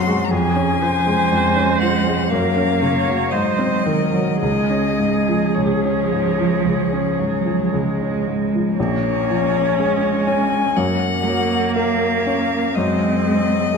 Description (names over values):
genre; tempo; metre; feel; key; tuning
classical, slow romantic movement for piano quartet; 52-63 BPM; 4/4; rubato; Db major; A4 = 439 Hz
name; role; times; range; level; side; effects
rich violin; melody; 0.0-13.8 s; Db5 to C6; -22 LUFS; left 7 dB; none
rich cello; second line; 0.0-13.8 s; F3 to Bb3; -23 LUFS; right 6 dB; none
clear grand piano; accompaniment; 0.0-13.8 s; Bb1 to Bb4; -20 LUFS; left 1 dB; none
rich viola; accompaniment; 0.0-13.8 s; Bb3 to Db5; -24 LUFS; right 4 dB; none
room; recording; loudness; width
wet concert hall reverb, RT60 1.9 s; minimal, uncompressed stereo recording; -16 LUFS; side -5 dB against mid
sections
0.0-8.8 A section; 8.8-13.8 B section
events
none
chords
0.3 Db/F; 2.3 Gb; 3.3 Ab7; 4.4 Db; 8.8 Bbm7; 10.8 Gb; 12.8 Ab7/Gb